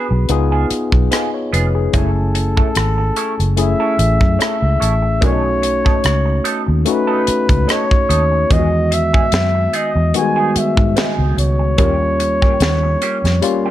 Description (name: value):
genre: lush 1970s-style soul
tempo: 73 BPM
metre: 4/4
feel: swing 54% on 16ths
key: unclear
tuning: A4 = 440 Hz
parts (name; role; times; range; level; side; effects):
- mellow flugelhorn; melody; 0.0-13.7 s; A4 to G#5; -20 LUFS; equal; slapback echo
- barky tine electric piano; accompaniment; 0.0-13.7 s; D#3 to G#5; -20 LUFS; left 3 dB; auto-pan
- electric guitar through a small old amp; riff; 0.0-13.7 s; A#3 to A4; -25 LUFS; right 8 dB; wah
- vintage muted fingered electric bass; bass; 0.1-13.4 s; E#1 to G#2; -17 LUFS; equal; none
- tight funk drum kit; drums; 0.3-13.6 s; hi-hat, kick drum, rim click, snare drum; -17 LUFS; equal; none
room: studio ambience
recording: none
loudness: -13 LUFS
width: side -13 dB against mid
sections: 0.0-13.7 A section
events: none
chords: 0.3 C#7; 1.9 F#m7; 5.2 B7; 8.5 Emaj7; 11.8 D#7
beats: 0.30 1.12 | 1.94 2.76 3.58 4.40 | 5.22 6.04 6.86 7.68 | 8.51 9.33 10.15 10.97 | 11.79 12.61 13.43